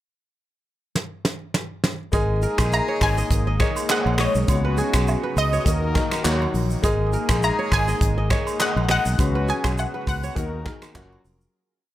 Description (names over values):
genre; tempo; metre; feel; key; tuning
afrobeats; 102 BPM; 4/4; swing 55% on 16ths; G# minor; A4 = 441 Hz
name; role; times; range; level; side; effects
soft brush drum kit; drums; 1.0-11.5 s; finger snaps, handclaps, hi-hat, kick drum, rim click, shaker, snare drum; -24 LUFS; equal; none
clear horn section; second line; 2.1-11.2 s; F#3 to A#4; -30 LUFS; left 3 dB; plate reverb
warm grand piano; accompaniment; 2.1-11.6 s; C#3 to D#5; -29 LUFS; left 4 dB; plate reverb
lush unison pad; sustained chords; 2.5-11.5 s; C#3 to F#4; -33 LUFS; equal; chorus, phaser, sidechain pumping, plate reverb
kora; riff; 2.1-11.9 s; F#4 to D#5; -30 LUFS; right 5 dB; digital delay
fingered electric bass; bass; 2.1-11.5 s; E#1 to D#2; -23 LUFS; equal; none
agogo bells and woodblock; percussion; 2.1-11.2 s; none; -34 LUFS; right 7 dB; none
analog pluck; melody; 2.7-11.2 s; C#5 to A#5; -25 LUFS; left 1 dB; chorus, plate reverb
room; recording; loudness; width
light reverb; none; -19 LUFS; side -14 dB against mid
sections
0.0-2.1 pickup bar; 2.1-11.5 chorus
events
drum fill 1.0-2.1; fade-out 9.2-11.5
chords
0.0 N.C.; 2.1 G#sus2; 4.5 C#7sus4; 5.7 D#m; 6.8 G#sus2; 9.2 C#7sus4; 10.4 D#m; 11.0 F#maj7